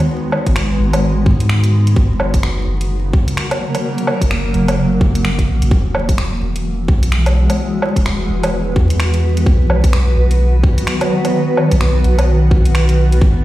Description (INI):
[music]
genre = future garage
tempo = 128 BPM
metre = 4/4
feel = swing 60% on 16ths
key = unclear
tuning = A4 = 439 Hz
[part]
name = granular cloud pad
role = sustained chords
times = 0.0-13.4 s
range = C#3 to B4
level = -18 LUFS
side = equal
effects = built-in reverb, sidechain pumping
[part]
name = garage drum kit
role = drums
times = 0.0-13.2 s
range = finger snaps, hi-hat, woodblock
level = -22 LUFS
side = equal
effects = overdrive, small room reverb
[part]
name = soft dub sub bass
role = bass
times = 0.5-13.4 s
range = E1 to G#2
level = -15 LUFS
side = equal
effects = none
[part]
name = electronic kick drum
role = drums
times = 0.5-13.3 s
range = none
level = -13 LUFS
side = equal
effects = overdrive, small room reverb
[sound]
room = light reverb, digital ambience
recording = played on a big sound system in a bare room, stone room reverb, vinyl crackle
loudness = -12 LUFS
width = side -15 dB against mid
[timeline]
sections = 0.0-13.4 A section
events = none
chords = 0.0 G#m7; 2.0 F#; 5.7 Eadd9; 9.5 B